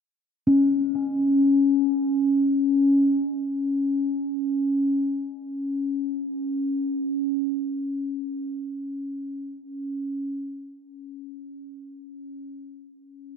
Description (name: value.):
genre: world meditative, free-time meditation music.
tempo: free time.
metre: none.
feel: none.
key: unclear.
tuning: A4 = 440 Hz.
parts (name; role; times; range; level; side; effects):
quartz singing bowl; solo; 0.5-8.1 s; C#4; -23 LUFS; left 1 dB; analog delay.
room: wet huge ambient reverb, RT60 8.1 s.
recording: dreamy mix soaked in reverb.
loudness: -22 LUFS.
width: side -7 dB against mid.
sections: 0.0-13.4 A section.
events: none.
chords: none.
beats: free time.